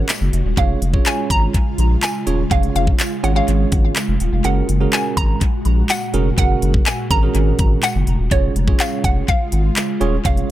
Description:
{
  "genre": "dance-pop",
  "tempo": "124 BPM",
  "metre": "4/4",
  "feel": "straight",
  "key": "F# major",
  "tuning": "A4 = 440 Hz",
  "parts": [
    { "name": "hollow square pluck", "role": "melody", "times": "0.0-10.5 s", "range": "C#5 to A#5", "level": "-23 LUFS", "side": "equal", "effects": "chorus, tape echo" },
    { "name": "bell-like tine electric piano", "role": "accompaniment", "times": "0.0-10.5 s", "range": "C#4 to C#5", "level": "-24 LUFS", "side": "right 7 dB", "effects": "sidechain pumping" },
    { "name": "ethereal airy pad", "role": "sustained chords", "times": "0.0-10.5 s", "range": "A#2 to F#4", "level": "-25 LUFS", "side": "right 1 dB", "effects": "ensemble chorus, built-in reverb, sidechain pumping" },
    { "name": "saturated sub bass", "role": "bass", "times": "0.0-10.4 s", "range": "D#1 to A#1", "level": "-18 LUFS", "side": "equal", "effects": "sidechain pumping" },
    { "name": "pop drum kit", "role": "drums", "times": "0.1-10.5 s", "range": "handclaps, hi-hat, kick drum", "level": "-19 LUFS", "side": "equal", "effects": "none" },
    { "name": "tambourine", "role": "percussion", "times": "0.1-9.9 s", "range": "none", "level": "-30 LUFS", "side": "left 6 dB", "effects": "none" }
  ],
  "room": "little or no reverb",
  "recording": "echo-heavy mix",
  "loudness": "-15 LUFS",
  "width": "side -14 dB against mid",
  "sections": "0.0-10.5 A section",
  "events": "kick muted 4.4-4.9",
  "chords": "0.0 F#add9; 0.6 C#; 4.4 F#add9; 8.3 C#"
}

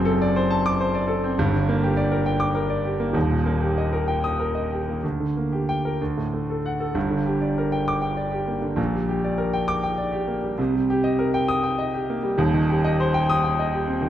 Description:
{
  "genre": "classical, virtuoso piano study",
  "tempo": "62-69 BPM (dotted quarters)",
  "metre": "6/8",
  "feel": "rubato",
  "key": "G minor",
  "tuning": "A4 = 440 Hz",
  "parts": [
    { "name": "warm concert grand piano", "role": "solo", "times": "0.0-14.1 s", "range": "Eb1 to Eb6", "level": "-20 LUFS", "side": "equal", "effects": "none" }
  ],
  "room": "moderate recital hall reverb, RT60 1.3 s",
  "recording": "dark, warm production",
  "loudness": "-21 LUFS",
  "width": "side -11 dB against mid",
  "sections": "0.0-7.0 A section; 7.0-14.1 B section",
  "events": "none",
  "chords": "0.0 D7/F#; 1.4 Gm; 3.2 Eb; 5.0 Gm/D; 6.0 D; 7.0 Gm; 8.8 Gm/Bb; 10.6 Cm7; 12.4 Cm/Eb"
}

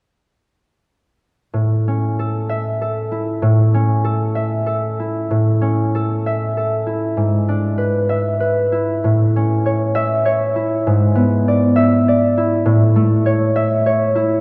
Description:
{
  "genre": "classical, solo harp piece",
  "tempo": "65 BPM (dotted quarters)",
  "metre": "6/8",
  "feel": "uneven beats, rubato",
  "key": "A major",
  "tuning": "A4 = 439 Hz",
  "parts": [
    { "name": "concert harp", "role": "solo", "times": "1.5-14.4 s", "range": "G#2 to E5", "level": "-17 LUFS", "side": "equal", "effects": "none" }
  ],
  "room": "wet church reverb, RT60 3.7 s",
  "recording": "dark, warm production",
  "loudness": "-17 LUFS",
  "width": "mono",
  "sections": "1.6-5.3 A section; 5.3-14.4 B section",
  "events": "none",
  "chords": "1.6 A; 7.2 E7/G#; 9.1 A; 10.9 E7/G#; 12.7 A"
}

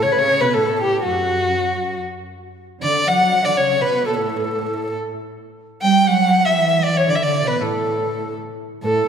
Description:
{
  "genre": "Persian modal ensemble",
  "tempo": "120 BPM",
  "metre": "3/4",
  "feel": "straight",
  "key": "unclear",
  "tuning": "A4 = 440 Hz",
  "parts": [
    { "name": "dark violin", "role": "melody", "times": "0.0-9.1 s", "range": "F#4 to G5", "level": "-18 LUFS", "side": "equal", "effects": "none" },
    { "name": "breathy ney", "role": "second line", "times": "0.0-9.1 s", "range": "F#4 to G5", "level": "-24 LUFS", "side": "left 3 dB", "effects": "none" },
    { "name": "clear symphonic cello section", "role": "second line", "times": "0.0-9.1 s", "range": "F#2 to G3", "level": "-23 LUFS", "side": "right 3 dB", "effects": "none" }
  ],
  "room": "wet concert hall reverb, RT60 2.2 s",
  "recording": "recorded in a church or concert hall",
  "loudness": "-16 LUFS",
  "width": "side -7 dB against mid",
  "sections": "0.0-9.1 A section",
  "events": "none",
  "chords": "none"
}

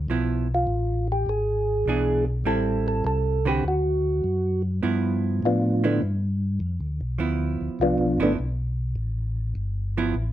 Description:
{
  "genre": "jazz",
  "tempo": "101 BPM",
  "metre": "4/4",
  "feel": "swing 69% on 8ths",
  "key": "G mixolydian",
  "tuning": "A4 = 443 Hz",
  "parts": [
    { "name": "mellow tonewheel organ", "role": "bass", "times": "0.0-10.3 s", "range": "G1 to A2", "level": "-26 LUFS", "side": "left 1 dB", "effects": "chorus vibrato, slow rotary speaker" },
    { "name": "hollow-body jazz guitar", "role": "accompaniment", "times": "0.1-10.1 s", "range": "D3 to B4", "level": "-27 LUFS", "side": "right 5 dB", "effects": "none" },
    { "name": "percussive tonewheel organ", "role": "melody", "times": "0.5-8.3 s", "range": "D3 to A4", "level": "-24 LUFS", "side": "equal", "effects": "slow rotary speaker" }
  ],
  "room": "light reverb",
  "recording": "none",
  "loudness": "-22 LUFS",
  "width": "side -12 dB against mid",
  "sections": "0.0-4.8 A section; 4.8-10.3 B section",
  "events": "tonewheel organ solo 4.8-10.3",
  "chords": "0.1 G13 (rootless); 1.3 E7; 2.5 Am7; 3.6 D; 4.8 G13"
}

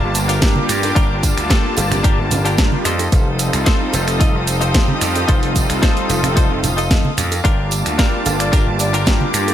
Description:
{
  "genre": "nu-disco, nu disco",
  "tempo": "111 BPM",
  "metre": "4/4",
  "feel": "straight",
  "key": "G minor",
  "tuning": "A4 = 441 Hz",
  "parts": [
    { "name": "warm analog pad", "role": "accompaniment", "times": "0.0-9.5 s", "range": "G3 to A5", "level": "-22 LUFS", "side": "equal", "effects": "chorus, ping-pong delay" },
    { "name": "warm studio string section", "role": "sustained chords", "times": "0.0-9.5 s", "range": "G4 to Eb6", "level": "-26 LUFS", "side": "equal", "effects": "sidechain pumping" },
    { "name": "direct-recorded clean electric guitar", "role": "riff", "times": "0.0-9.3 s", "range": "D4 to Eb5", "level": "-24 LUFS", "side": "left 3 dB", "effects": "wide subtle chorus, ping-pong delay" },
    { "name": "gritty slap bass", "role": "bass", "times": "0.0-9.5 s", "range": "F1 to G2", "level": "-20 LUFS", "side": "equal", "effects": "overdrive, sidechain pumping" },
    { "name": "sub drop", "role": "sound effects", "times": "0.2-1.0 s", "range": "none", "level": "barely audible", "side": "none", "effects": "none" },
    { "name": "house drum kit", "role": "drums", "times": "0.1-9.5 s", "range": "finger snaps, hi-hat, shaker, snare drum", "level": "-22 LUFS", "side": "right 1 dB", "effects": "none" },
    { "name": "tambourine, congas and bongos", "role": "percussion", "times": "0.1-9.5 s", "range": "none", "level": "-26 LUFS", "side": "right 3 dB", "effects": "none" },
    { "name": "electronic kick drum", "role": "drums", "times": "0.4-9.2 s", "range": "none", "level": "-16 LUFS", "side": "equal", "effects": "none" },
    { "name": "jazz flute", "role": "melody", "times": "8.4-8.9 s", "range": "D5", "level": "-27 LUFS", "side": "equal", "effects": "ping-pong delay" }
  ],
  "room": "little or no reverb",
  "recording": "none",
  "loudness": "-14 LUFS",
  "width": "side -11 dB against mid",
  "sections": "0.0-9.5 A section",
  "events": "impact 0.0-1.0",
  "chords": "0.0 Gm7; 2.9 F7; 7.4 Gm7"
}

